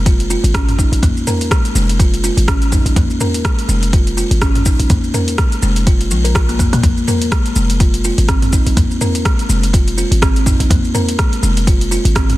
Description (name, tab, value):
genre	afro house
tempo	124 BPM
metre	4/4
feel	swing 57% on 16ths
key	Bb minor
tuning	A4 = 442 Hz
part	warm 808-style bass	bass	0.0-12.4 s	F1 to Bb2	-16 LUFS	equal	sidechain pumping
part	buzzing kalimba	arpeggios	0.1-12.3 s	F3 to Bb4	-19 LUFS	equal	sidechain pumping, digital delay
part	deep house drum kit	drums	0.1-12.4 s	hi-hat, rim click, shaker, toms	-19 LUFS	right 1 dB	soft clipping on snare
part	electronic kick drum	drums	0.1-12.3 s	none	-14 LUFS	equal	none
room	little or no reverb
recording	dense, heavily limited modern master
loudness	-12 LUFS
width	side -17 dB against mid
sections	0.0-12.4 A section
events	none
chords	0.0 Bb7(no3); 6.8 Fm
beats	0.06 0.54 | 1.03 1.51 2.00 2.48 | 2.96 3.45 3.93 4.42 | 4.90 5.38 5.87 6.35 | 6.83 7.32 7.80 8.29 | 8.77 9.25 9.74 10.22 | 10.71 11.19 11.67 12.16